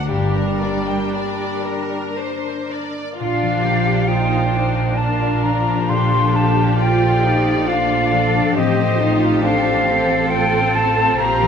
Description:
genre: classical, slow romantic movement for symphony orchestra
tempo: 67 BPM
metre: 3/4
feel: rubato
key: G minor, Bb major from 3.2 s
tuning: A4 = 441 Hz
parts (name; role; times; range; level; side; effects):
- rich symphonic violin section; melody; 0.0-11.5 s; A4 to D5; -29 LUFS; left 3 dB; none
- warm symphonic violin section; second line; 0.0-11.5 s; F4 to G5; -28 LUFS; left 2 dB; none
- rich symphonic viola section; accompaniment; 0.0-11.5 s; C4 to F4; -23 LUFS; equal; none
- concert harp; arpeggios; 0.0-11.5 s; G2 to D5; -24 LUFS; left 7 dB; none
- mellow bassoon; accompaniment; 0.1-2.2 s; G3; -26 LUFS; left 1 dB; none
- warm symphonic cello section; bass; 0.1-11.5 s; G2 to A4; -25 LUFS; right 3 dB; none
- warm symphonic double bass section; bass; 0.1-11.5 s; G1 to Bb1; -22 LUFS; right 4 dB; none
- silver concert flute; second line; 3.2-11.5 s; Eb5 to C6; -20 LUFS; left 1 dB; none
room: moderate recital hall reverb, RT60 1.7 s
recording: none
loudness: -15 LUFS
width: side -7 dB against mid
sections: 0.0-3.2 A section; 3.2-11.5 B section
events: none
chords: 0.1 Gm; 3.2 Bb; 5.9 F/Bb; 8.6 F7/A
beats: | 0.08 1.14 2.19 | 3.20 4.09 4.98 | 5.89 6.79 7.68 | 8.56 9.44 10.32 | 11.20

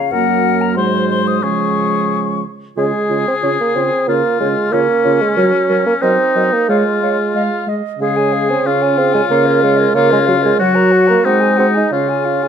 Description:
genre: quick classical-period movement for wind quintet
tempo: 92 BPM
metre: 2/4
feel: straight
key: Db major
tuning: A4 = 440 Hz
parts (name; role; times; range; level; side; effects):
- hollow concert flute; melody; 0.0-12.5 s; Db5 to Eb6; -21 LUFS; left 11 dB; none
- dark bassoon; bass; 0.0-12.5 s; Gb2 to Eb4; -16 LUFS; right 3 dB; none
- clear oboe; second line; 0.1-12.5 s; Db4 to C5; -18 LUFS; left 6 dB; none
- dark French horn; accompaniment; 0.1-12.5 s; Db3 to Ab3; -20 LUFS; left 1 dB; none
- warm clarinet; accompaniment; 0.1-12.5 s; Ab3 to F5; -21 LUFS; right 11 dB; none
room: moderate recital hall reverb, RT60 1.4 s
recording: close, detailed microphones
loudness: -12 LUFS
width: side -8 dB against mid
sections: 0.0-2.8 A section; 2.8-12.5 A section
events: none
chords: 0.1 Gb; 0.8 Ab7; 1.4 Db; 4.1 Bbm/Db; 5.4 Gb; 6.0 Ebm/Gb; 6.7 Db/Ab; 7.3 Ab5; 8.0 Db; 9.3 Bbm/Db; 10.6 Gb; 11.2 Ab7; 11.9 Db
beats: | 0.12 0.77 | 1.44 2.10 | 2.77 3.43 | 4.08 4.73 | 5.37 6.02 | 6.68 7.35 | 8.01 8.65 | 9.30 9.95 | 10.60 11.25 | 11.92

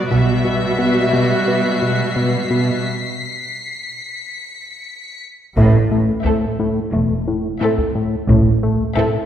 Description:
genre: cinematic, suspense film score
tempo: 88 BPM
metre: 4/4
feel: straight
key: A minor from 5.6 s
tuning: A4 = 440 Hz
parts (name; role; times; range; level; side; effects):
- rich symphonic violin section; melody; 0.0-9.3 s; E5; -25 LUFS; left 3 dB; none
- clear symphonic viola section; accompaniment; 0.0-9.3 s; G3 to F#4; -23 LUFS; right 1 dB; none
- clear symphonic cello section; bass; 0.0-8.8 s; E2 to B2; -23 LUFS; right 2 dB; none
- fat analog bass; riff; 0.1-9.2 s; A2 to B3; -19 LUFS; left 1 dB; none
- clear symphonic double bass section; bass; 0.1-0.8, 5.6-8.8 s; E1 to B1; -19 LUFS; right 2 dB; none
- clear studio violin section; texture; 0.1-5.2 s; B6 to C7; -28 LUFS; left 3 dB; none
- taiko ensemble; drums; 5.6-9.3 s; none; -23 LUFS; equal; none
- rich symphonic violin section; second line; 6.3-9.3 s; A4; -23 LUFS; right 1 dB; none
room: wet scoring stage reverb, RT60 1.8 s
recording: heard from further back in the room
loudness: -15 LUFS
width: side -10 dB against mid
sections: 0.0-5.6 A section; 5.6-9.3 B section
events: break 2.8-5.6; band accent 5.6-6.2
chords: 0.1 Emadd9/B; 5.6 Am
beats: | 0.11 0.80 1.48 2.16 | 2.84 3.52 4.20 4.89 | 5.57 6.25 6.93 7.61 | 8.29 8.98

